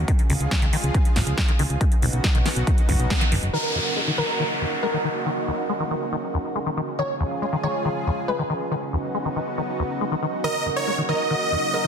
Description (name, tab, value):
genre	uplifting trance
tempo	139 BPM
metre	4/4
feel	straight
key	Eb minor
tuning	A4 = 440 Hz
part	lush unison pad	sustained chords	0.0-11.9 s	Db3 to Ab4	-28 LUFS	right 1 dB	chorus, sidechain pumping
part	solid FM bass	bass	0.0-3.5 s	F#1 to Db2	-23 LUFS	equal	sidechain pumping
part	liquid acid bass	arpeggios	0.1-11.9 s	Eb2 to Ab3	-28 LUFS	left 2 dB	phaser, vintage 12-bit sampler grit, sidechain pumping, tape echo
part	big-room dance drum kit	drums	0.1-3.5 s	hi-hat, snare drum	-27 LUFS	right 1 dB	sidechain pumping on hats, low-pass filter on hats, low-pass filter on snare
part	electronic kick drum	drums	0.1-3.2 s	none	-20 LUFS	equal	none
part	glassy wavetable pluck	second line	3.5-11.9 s	Bb4 to Db5	-28 LUFS	right 1 dB	chorus, ping-pong delay
part	downlifter	sound effects	3.5-7.0 s	none	-28 LUFS	equal	none
part	supersaw chords	melody	10.4-11.9 s	Db5 to Eb5	-23 LUFS	right 1 dB	sidechain pumping, dub echo
room	moderate digital room reverb, RT60 1.1 s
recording	dense, heavily limited modern master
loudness	-21 LUFS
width	side -7 dB against mid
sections	0.0-3.5 A section; 3.5-11.9 B section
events	band accent 3.1; filter sweep on analog synth pad 3.5-11.9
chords	0.1 Db; 1.8 Badd9; 3.5 Ebm7; 7.0 Db; 8.7 Badd9; 10.4 Ebm7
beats	| 0.08 0.51 0.94 1.38 | 1.81 2.24 2.67 3.10 | 3.53 3.97 4.40 4.83 | 5.26 5.69 6.12 6.56 | 6.99 7.42 7.85 8.28 | 8.71 9.15 9.58 10.01 | 10.44 10.87 11.30 11.74